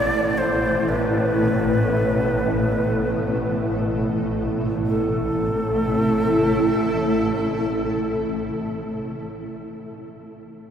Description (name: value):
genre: dark ambient drone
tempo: free time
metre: none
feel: none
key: A minor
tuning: A4 = 440 Hz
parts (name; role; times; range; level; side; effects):
- breathy shakuhachi; melody; 0.0-8.2 s; A4 to D5; -25 LUFS; equal; tape echo
- granular cloud pad; sustained chords; 0.0-8.7 s; B2 to A4; -24 LUFS; equal; built-in reverb, lush chorus
- swarming drone; drone; 0.0-8.2 s; A1 to A2; -25 LUFS; equal; built-in reverb, ensemble chorus
room: wet huge ambient reverb, RT60 7.9 s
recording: dreamy mix soaked in reverb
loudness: -19 LUFS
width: side -8 dB against mid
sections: 0.0-4.9 A section; 4.9-8.9 B section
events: none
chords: 0.0 Asus2; 4.9 Am